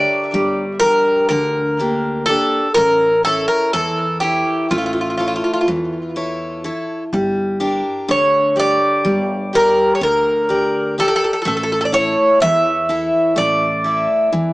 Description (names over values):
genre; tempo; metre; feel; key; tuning
greek folk, Greek bouzouki band; 124 BPM (eighths); 9/8; straight; unclear; A4 = 440 Hz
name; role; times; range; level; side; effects
Greek bouzouki; melody; 0.0-14.5 s; F4 to E5; -16 LUFS; equal; tape echo
picked steel-string acoustic guitar; accompaniment; 0.0-14.5 s; D3 to E5; -20 LUFS; left 1 dB; none
upright bass; bass; 0.0-14.5 s; G1 to E2; -27 LUFS; equal; none
room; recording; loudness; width
moderate studio reverb, RT60 0.5 s; small speaker sound; -14 LUFS; side -20 dB against mid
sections
0.0-14.5 A section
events
none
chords
0.0 Gm; 2.8 A; 7.1 Gm; 11.5 A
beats
0.33 0.81 1.30 1.79 2.27 | 2.76 3.25 3.73 4.22 4.70 5.19 5.67 6.16 6.64 | 7.12 7.61 8.09 8.57 9.05 9.53 10.02 10.50 10.98 | 11.46 11.93 12.41 12.89 13.37 13.85 14.32